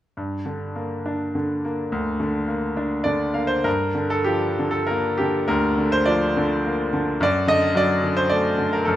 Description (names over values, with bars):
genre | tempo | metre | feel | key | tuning
classical, lyrical solo piano | 95-110 BPM | 3/4 | rubato | G minor | A4 = 440 Hz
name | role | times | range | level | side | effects
bright grand piano | solo | 0.2-9.0 s | D2 to F5 | -20 LUFS | equal | none
room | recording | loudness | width
moderate recital hall reverb, RT60 1.4 s | none | -20 LUFS | side -12 dB against mid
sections
0.2-3.7 A section; 3.7-9.0 B section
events
grand piano fill 2.8-3.7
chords
0.2 Gm; 3.7 Gm7; 7.2 D/F#